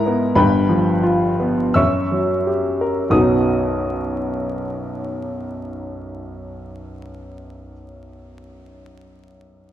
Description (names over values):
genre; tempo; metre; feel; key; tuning
classical, romantic character piece for solo piano; 41-54 BPM; 2/4; rubato; B major; A4 = 441 Hz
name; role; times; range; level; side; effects
warm grand piano; solo; 0.0-9.7 s; G1 to E6; -18 LUFS; equal; none
room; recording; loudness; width
moderate recital hall reverb, RT60 1.7 s; vinyl crackle; -16 LUFS; side -11 dB against mid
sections
0.0-3.1 A section; 3.1-7.9 B section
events
slowing down 0.0-3.1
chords
0.4 G7; 1.8 F#7b9; 3.1 B